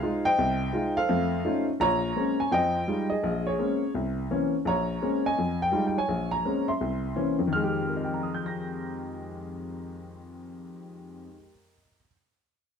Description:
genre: solo jazz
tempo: 168 BPM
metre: 4/4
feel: swing 63% on 8ths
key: F minor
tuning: A4 = 440 Hz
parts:
  - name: warm upright piano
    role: solo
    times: 0.0-12.1 s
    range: Bb1 to Bb6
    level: -26 LUFS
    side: left 1 dB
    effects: none
room: wet club reverb, RT60 0.9 s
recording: dark, warm production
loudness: -25 LUFS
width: side -7 dB against mid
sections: 0.0-1.8 A section; 1.8-7.5 B section; 7.5-10.4 C section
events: none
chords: 0.0 Fm7; 1.1 F7b13; 1.8 Bbm9; 2.5 Fm9; 3.2 Bbm9; 3.9 C7b9; 4.7 Bbm9; 5.4 Fm9; 6.1 Bbm9; 6.8 C7b9; 7.5 Fm9

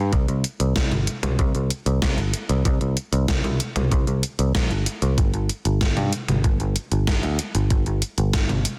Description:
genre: synthwave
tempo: 95 BPM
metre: 4/4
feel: straight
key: unclear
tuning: A4 = 445 Hz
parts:
  - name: picked electric bass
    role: bass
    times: 0.0-8.6 s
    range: G1 to G2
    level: -24 LUFS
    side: equal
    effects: none
  - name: electronic kick drum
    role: drums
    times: 0.1-8.5 s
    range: none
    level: -25 LUFS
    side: equal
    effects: small room reverb
  - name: gated 80s digital drum machine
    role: drums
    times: 0.1-8.8 s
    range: hi-hat, snare drum, toms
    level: -29 LUFS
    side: equal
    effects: gated reverb, gated reverb snare, small room reverb
room: light reverb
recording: dense, heavily limited modern master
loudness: -22 LUFS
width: mono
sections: 0.0-8.8 A section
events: none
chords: none

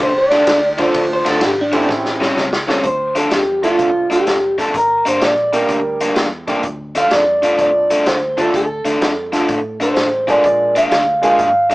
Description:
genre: electric blues shuffle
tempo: 126 BPM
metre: 4/4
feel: swing 66% on 8ths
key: D minor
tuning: A4 = 440 Hz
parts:
  - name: electric guitar through a small old amp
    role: melody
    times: 0.0-11.7 s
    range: D4 to F5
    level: -15 LUFS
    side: equal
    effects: none
  - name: overdriven electric guitar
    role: riff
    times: 0.0-11.7 s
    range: G2 to D4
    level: -19 LUFS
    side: left 1 dB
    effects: none
  - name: vintage muted fingered electric bass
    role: bass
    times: 0.0-11.7 s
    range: F1 to A2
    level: -34 LUFS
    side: equal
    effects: none
  - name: vintage drum kit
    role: drums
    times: 0.0-11.7 s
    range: hi-hat, kick drum, ride cymbal, snare drum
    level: -22 LUFS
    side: equal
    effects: none
  - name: clear upright piano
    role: accompaniment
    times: 0.8-11.4 s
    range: F3 to C5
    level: -20 LUFS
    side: right 1 dB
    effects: none
room: light reverb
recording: rough rehearsal-room recording, small speaker sound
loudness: -13 LUFS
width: side -20 dB against mid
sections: 0.0-2.8 A section; 2.8-11.7 B section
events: clean electric guitar solo 0.0-2.8; drum fill 1.9-2.8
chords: 0.0 Dm; 1.9 A7#9; 2.8 Dm; 4.7 Gm; 6.6 Dm; 10.4 Bb7

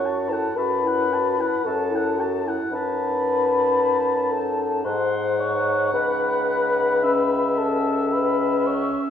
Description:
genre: classical, slow romantic movement for wind quintet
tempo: 56 BPM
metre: 3/4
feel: rubato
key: C# minor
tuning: A4 = 440 Hz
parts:
  - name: mellow hollow silver concert flute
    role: melody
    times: 0.0-9.0 s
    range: A5 to C#6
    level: -28 LUFS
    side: left 5 dB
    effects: none
  - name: mellow oboe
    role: second line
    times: 0.0-9.1 s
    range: E5 to A5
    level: -28 LUFS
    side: left 1 dB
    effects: none
  - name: mellow French horn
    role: accompaniment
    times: 0.0-9.0 s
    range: A4 to C#5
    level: -23 LUFS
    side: left 3 dB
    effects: none
  - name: mellow clarinet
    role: accompaniment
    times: 0.0-9.1 s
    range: C#4 to F#4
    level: -29 LUFS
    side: right 3 dB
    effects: none
  - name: mellow bassoon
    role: bass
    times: 0.0-8.9 s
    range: C#2 to G#2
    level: -27 LUFS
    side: equal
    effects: none
room: wet scoring stage reverb, RT60 1.7 s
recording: worn, warbling old tape, cassette tape, warbly pitch drift, small room ambience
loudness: -20 LUFS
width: side -8 dB against mid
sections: 0.0-9.1 A section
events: none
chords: 0.0 F#m7; 2.7 D#dim/F#; 4.8 G#7; 5.9 C#m

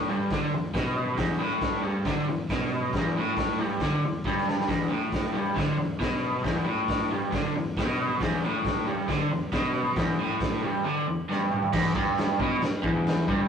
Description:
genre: garage rock duo or trio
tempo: 137 BPM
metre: 4/4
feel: straight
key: E minor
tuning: A4 = 444 Hz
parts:
  - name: crunchy overdriven guitar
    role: riff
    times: 0.0-13.5 s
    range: E2 to D3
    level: -26 LUFS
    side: equal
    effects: spring reverb
  - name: raw garage drum kit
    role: drums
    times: 0.3-13.4 s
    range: crash cymbal, hi-hat, kick drum, snare drum, toms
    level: -30 LUFS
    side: equal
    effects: none
room: moderate studio reverb, RT60 0.6 s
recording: rough rehearsal-room recording, warm saturation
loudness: -24 LUFS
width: side -7 dB against mid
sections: 0.0-11.7 A section; 11.7-13.5 B section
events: drum fill 4.2-4.7, 11.3-11.7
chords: none

